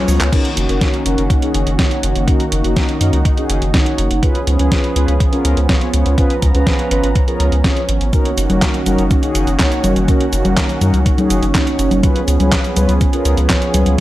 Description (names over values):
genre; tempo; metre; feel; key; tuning
italo disco; 123 BPM; 4/4; straight; F# major; A4 = 439 Hz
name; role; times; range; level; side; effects
warm analog pad; sustained chords; 0.0-14.0 s; D#3 to A#5; -20 LUFS; right 2 dB; lush chorus
mellow synth brass; stabs; 0.0-14.0 s; C#4 to C#5; -21 LUFS; equal; chorus, tape echo
round analog bass; bass; 0.1-14.0 s; F#1 to F#2; -16 LUFS; equal; none
clean 12-bit digital drum machine; drums; 0.1-14.0 s; cabasa, congas, crash cymbal, handclaps, hi-hat, snare drum; -19 LUFS; left 1 dB; none
electronic kick drum; drums; 0.3-13.6 s; none; -16 LUFS; equal; none
room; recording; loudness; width
light reverb, digital ambience; none; -12 LUFS; side -15 dB against mid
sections
0.3-14.0 A section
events
drum fill 0.0-0.3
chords
0.3 F#6; 4.2 C#7; 8.1 F#6; 12.0 C#7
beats
| 0.33 0.81 1.30 1.79 | 2.28 2.77 3.25 3.74 | 4.23 4.72 5.20 5.69 | 6.18 6.67 7.16 7.64 | 8.13 8.62 9.11 9.59 | 10.08 10.57 11.06 11.54 | 12.03 12.52 13.01 13.50 | 13.98